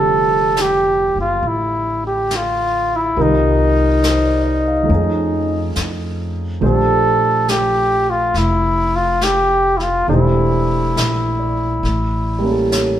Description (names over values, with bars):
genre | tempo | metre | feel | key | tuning
jazz ballad | 69 BPM | 4/4 | swing 68% on 8ths | F major | A4 = 440 Hz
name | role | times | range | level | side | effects
trumpet with bucket mute | melody | 0.0-12.7 s | Eb4 to A4 | -16 LUFS | equal | none
warm grand piano | accompaniment | 0.0-13.0 s | D3 to F5 | -21 LUFS | right 2 dB | none
upright bass | bass | 0.0-13.0 s | E1 to F2 | -20 LUFS | left 1 dB | none
jazz brush drum kit | drums | 0.6-13.0 s | brushed snare drum, hi-hat, snare drum | -26 LUFS | left 1 dB | none
room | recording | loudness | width
wet stone room reverb, RT60 1.1 s | band playing live in one room | -14 LUFS | side -11 dB against mid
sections
0.0-13.0 A section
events
none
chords
0.0 F; 3.2 Cm7; 4.9 F7alt; 6.6 Bbmaj7; 10.1 Em7b5; 11.8 A7b9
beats
0.56 1.43 2.30 | 3.16 4.03 4.89 5.76 | 6.62 7.48 8.34 9.21 | 10.08 10.96 11.83 12.71